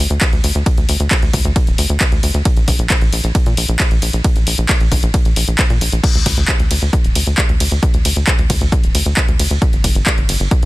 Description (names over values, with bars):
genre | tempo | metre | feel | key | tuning
uplifting trance | 134 BPM | 4/4 | straight | unclear | A4 = 440 Hz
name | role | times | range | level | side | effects
tight sequencer bass | bass | 0.0-10.7 s | D1 to Bb2 | -17 LUFS | equal | sidechain pumping
punchy analog drum machine | drums | 0.1-10.7 s | crash cymbal, handclaps, hi-hat, ride cymbal | -19 LUFS | equal | none
electronic kick drum | drums | 0.2-10.6 s | none | -15 LUFS | equal | none
room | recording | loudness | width
little or no reverb | dense, heavily limited modern master | -12 LUFS | side -19 dB against mid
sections
0.0-6.0 A section; 6.0-10.7 A section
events
drop 0.0-6.0, 6.0-10.7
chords
none